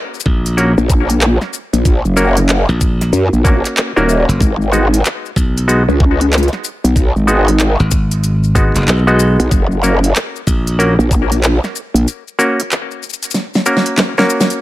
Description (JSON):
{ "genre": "glitch hop", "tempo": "94 BPM", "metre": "4/4", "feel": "swing 63% on 16ths", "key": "unclear", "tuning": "A4 = 440 Hz", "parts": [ { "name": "pop drum kit", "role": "drums", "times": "0.1-14.6 s", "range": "handclaps, hi-hat, shaker, snare drum", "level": "-18 LUFS", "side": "equal", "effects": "none" }, { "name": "glassy slap bass", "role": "bass", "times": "0.3-11.0 s", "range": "F#1 to B1", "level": "-14 LUFS", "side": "equal", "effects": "none" }, { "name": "electronic kick drum", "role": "drums", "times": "0.3-11.3 s", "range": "none", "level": "-14 LUFS", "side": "equal", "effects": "none" }, { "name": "clav", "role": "stabs", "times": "0.6-14.6 s", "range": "G#3 to A#4", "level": "-17 LUFS", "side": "equal", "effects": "sidechain pumping, ping-pong delay" }, { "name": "growl bass", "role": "bass", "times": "0.8-12.1 s", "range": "D#1 to F#2", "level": "-12 LUFS", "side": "equal", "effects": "chorus, tube saturation" } ], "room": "digital ambience", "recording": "none", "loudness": "-11 LUFS", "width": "side -16 dB against mid", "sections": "0.0-14.6 A section", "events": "drum fill 13.3-14.6", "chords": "0.0 F#; 4.4 G#m7; 9.5 F#" }